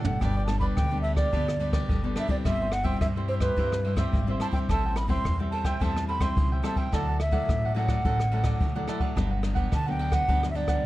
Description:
samba and choro; 107 BPM; 4/4; straight; G major; A4 = 441 Hz
bright baroque flute; melody; 0.0-10.9 s; B4 to C6; -30 LUFS; right 1 dB
cavaquinho; accompaniment; 0.0-10.9 s; D4 to G5; -36 LUFS; right 3 dB
nylon-string guitar; accompaniment; 0.0-10.9 s; G2 to E4; -32 LUFS; left 4 dB
upright bass; bass; 0.0-10.8 s; G1 to G2; -29 LUFS; equal
jazz brush drum kit; drums; 0.0-10.8 s; kick drum, ride cymbal, rim click, toms; -28 LUFS; equal
light reverb; dark, warm production; -24 LUFS; side -16 dB against mid
0.2-10.9 A section
drum fill 0.0
0.2 G; 2.4 C/G; 4.7 Am7; 6.9 Dadd9; 9.2 Gmaj7
| 0.21 0.77 1.33 1.89 | 2.45 3.01 3.56 4.12 | 4.68 5.24 5.80 6.36 | 6.92 7.48 8.04 8.60 | 9.16 9.72 10.28 10.84

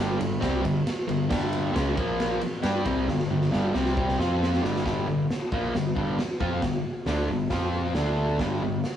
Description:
garage rock duo or trio; 136 BPM; 4/4; straight; G minor; A4 = 440 Hz
fuzz guitar; riff; 0.0-8.8 s; G2 to G4; -26 LUFS; equal; distortion
growling picked electric bass; bass; 0.0-8.8 s; G1 to G2; -31 LUFS; equal; overdrive
raw garage drum kit; drums; 0.2-8.9 s; crash cymbal, hi-hat, kick drum, ride cymbal, snare drum; -29 LUFS; equal
wet studio reverb, RT60 0.6 s; rough rehearsal-room recording, tube saturation; -24 LUFS; side -10 dB against mid
0.0-4.8 A section; 4.8-9.0 B section
drum fill 3.1-4.8
0.0 G5; 2.0 Bb5; 2.4 G5; 3.7 C5; 4.2 F5; 4.6 G5; 4.8 Gm; 7.5 F5; 7.9 D5; 8.4 G5
0.42 0.86 | 1.31 1.75 2.19 2.64 | 3.08 3.52 3.96 4.41 | 4.85 5.29 5.74 6.18 | 6.62 7.06 7.51 7.95 | 8.39 8.84

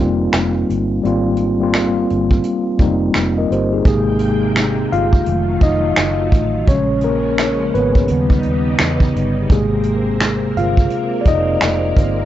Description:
lo-fi hip hop; 85 BPM; 4/4; swing 61% on 16ths; Ab major; A4 = 440 Hz
mellow tine electric piano; accompaniment; 0.0-12.2 s; C3 to F5; -17 LUFS; left 1 dB; medium stereo tremolo, low-pass filter, plate reverb
vintage muted fingered electric bass; bass; 0.0-12.2 s; F1 to Fb2; -21 LUFS; right 1 dB
vintage brush drum kit; drums; 0.3-12.2 s; finger snaps, hi-hat, kick drum, snare drum; -15 LUFS; right 1 dB
string machine, violins; sustained chords; 3.9-12.2 s; C3 to G5; -24 LUFS; equal; ensemble chorus, low-pass filter, plate reverb
light reverb; nothing above 7.7 kHz; -14 LUFS; side -12 dB against mid
0.0-3.9 A section; 3.9-12.2 B section
tine electric piano solo 3.9-12.2
0.0 Abmaj9; 5.3 F7b9; 6.7 Bbm7; 8.1 Ebaug7; 9.5 Abmaj9
0.32 | 1.03 1.73 2.44 3.15 | 3.85 4.56 5.26 5.97 | 6.68 7.38 8.09 8.79 | 9.50 10.21 10.91 11.62

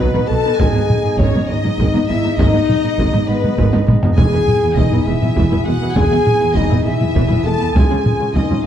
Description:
cinematic, epic orchestral film score; 67 BPM (dotted quarters); 6/8; straight; A4 = 438 Hz
rich chamber violin section; melody; 0.0-8.7 s; B4 to A5; -29 LUFS; left 3 dB
mellow hollow concert flute; second line; 0.0-8.7 s; B4 to A5; -29 LUFS; left 3 dB
rich symphonic violin section; second line; 0.0-8.7 s; B4 to A5; -28 LUFS; left 2 dB
dark symphonic viola section; accompaniment; 0.0-8.6 s; D#3 to B4; -25 LUFS; right 1 dB
mellow French horn section; sustained chords; 0.0-8.6 s; B3 to A4; -19 LUFS; left 4 dB
pipe organ, stopped flute; sustained chords; 0.0-8.7 s; B3 to G#5; -26 LUFS; right 1 dB
rich symphonic cello section; bass; 0.0-8.6 s; C#2 to B2; -22 LUFS; right 2 dB
warm symphonic double bass section; bass; 0.0-8.4 s; E1 to C#2; -20 LUFS; right 3 dB
taiko ensemble; drums; 0.0-8.7 s; -18 LUFS; equal
moderate scoring stage reverb, RT60 1.4 s; dark, warm production; -13 LUFS; side -10 dB against mid
0.0-8.7 A section
drum fill 3.7-4.2
0.0 B; 0.6 G#m; 4.2 E; 7.8 C#
| 0.60 1.49 | 2.38 3.28 | 4.17 5.07 | 5.96 6.86 | 7.75 8.65

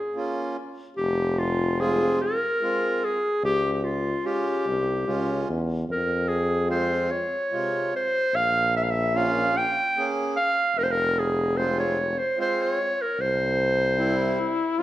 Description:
klezmer; 74 BPM; 3/4; straight; A4 = 439 Hz
warm clarinet; melody; 0.0-14.8 s; F4 to G5; -24 LUFS; equal
accordion; accompaniment; 0.2-14.8 s; C3 to Ab4; -29 LUFS; right 2 dB
clear tuba; bass; 1.0-14.6 s; F1 to F2; -28 LUFS; equal
bright trombone; second line; 14.0-14.8 s; E4 to F4; -26 LUFS; left 4 dB
wet recital hall reverb, RT60 1.3 s; -22 LUFS; side -14 dB against mid
0.0-14.8 A section
0.0 Bbm; 1.0 Fm; 3.4 Db; 5.9 Fm; 8.3 Bbm; 10.8 Fm; 13.2 C
0.15 | 0.98 1.80 2.62 | 3.44 4.26 5.08 | 5.90 6.71 7.53 | 8.34 9.15 9.96 | 10.77 11.58 12.38 | 13.19 13.99 14.79

